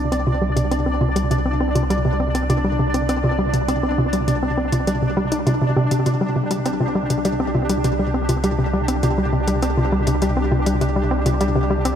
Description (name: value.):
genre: ambient, sequencer-driven space music.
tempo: 101 BPM.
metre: 4/4.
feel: straight.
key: unclear.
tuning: A4 = 442 Hz.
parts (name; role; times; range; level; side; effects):
round analog bass; bass; 0.0-12.0 s; C2; -24 LUFS; equal; tube saturation.
pulsing gated texture; texture; 0.0-12.0 s; D4 to D5; -24 LUFS; equal; chorus, built-in reverb.
hollow square pluck; riff; 0.1-11.9 s; C3 to Eb4; -20 LUFS; equal; chorus, tape echo.
electronic hi-hat and bongos; percussion; 0.1-12.0 s; none; -33 LUFS; left 3 dB; overdrive, tape echo.
room: wet lush hall reverb, RT60 2.6 s.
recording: dreamy mix soaked in reverb.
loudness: -17 LUFS.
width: side -9 dB against mid.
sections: 0.0-12.0 A section.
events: filter sweep on synth arpeggio sound 0.0-12.0.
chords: 0.0 C5.